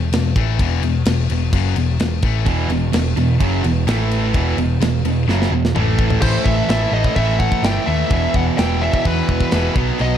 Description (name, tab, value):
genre	heavy metal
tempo	128 BPM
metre	4/4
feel	straight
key	unclear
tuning	A4 = 440 Hz
part	high-gain distorted guitar	riff	0.0-10.2 s	E2 to B3	-23 LUFS	left 13 dB	distortion
part	hollow-body short-scale picked electric bass	bass	0.0-10.1 s	E1 to E2	-19 LUFS	equal	none
part	tight metal drum kit	drums	0.1-10.1 s	china cymbal, crash cymbal, kick drum, snare drum, toms	-22 LUFS	equal	none
part	high-gain distorted guitar	riff	2.5-10.2 s	E2 to B3	-21 LUFS	right 11 dB	distortion
part	high-gain lead guitar	melody	6.2-10.2 s	B4 to G5	-22 LUFS	left 3 dB	distortion
room	small room ambience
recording	dark, warm production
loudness	-15 LUFS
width	side -9 dB against mid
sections	0.0-6.2 A section; 6.2-10.2 B section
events	drum fill 5.3-6.2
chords	0.0 E5; 3.9 A5; 4.3 E5; 5.8 A5; 8.1 E5